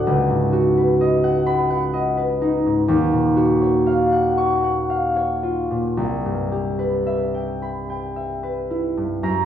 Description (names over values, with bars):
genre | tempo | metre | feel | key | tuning
classical, solo harp piece | 35-43 BPM (dotted quarters) | 6/8 | rubato | unclear | A4 = 444 Hz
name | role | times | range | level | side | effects
concert harp | solo | 0.0-9.5 s | C2 to Db6 | -18 LUFS | equal | none
room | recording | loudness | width
wet stone room reverb, RT60 1.1 s | worn, warbling old tape, cassette tape, warbly pitch drift | -18 LUFS | side -10 dB against mid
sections
0.0-9.2 A section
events
none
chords
0.1 Db9sus4; 2.9 Ebm9; 6.0 Cmaj7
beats
| 0.07 1.48 | 2.89 4.37 | 5.97 7.61 | 9.24